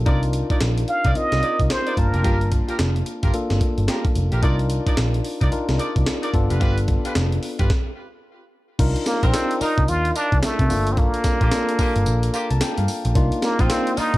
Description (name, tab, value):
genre	R&B, new jack swing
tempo	110 BPM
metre	4/4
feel	swing 61% on 16ths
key	C dorian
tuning	A4 = 440 Hz
part	tine electric piano	accompaniment	0.0-14.2 s	Bb3 to Bb5	-26 LUFS	left 2 dB	none
part	vintage muted picked electric bass	bass	0.0-14.2 s	F1 to C3	-21 LUFS	equal	none
part	warm horn section	stabs	0.1-14.1 s	Bb3 to D5	-31 LUFS	right 1 dB	digital delay
part	breakbeat sampler-style drum kit	drums	0.1-14.2 s	crash cymbal, handclaps, hi-hat, kick drum, snare drum, tambourine	-22 LUFS	equal	none
part	trumpet with plunger mute	melody	0.9-2.5, 9.1-14.2 s	A3 to F5	-23 LUFS	right 1 dB	none
room	digital ambience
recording	dark, warm production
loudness	-18 LUFS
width	side -18 dB against mid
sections	0.0-8.8 A section; 8.8-14.2 B section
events	stop 7.7-8.8; tine electric piano fill 12.1-13.2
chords	0.1 Cm11; 2.0 Gm7; 4.4 Cm11; 6.3 G7; 8.8 Cm11; 10.7 Gm7; 13.2 Cm11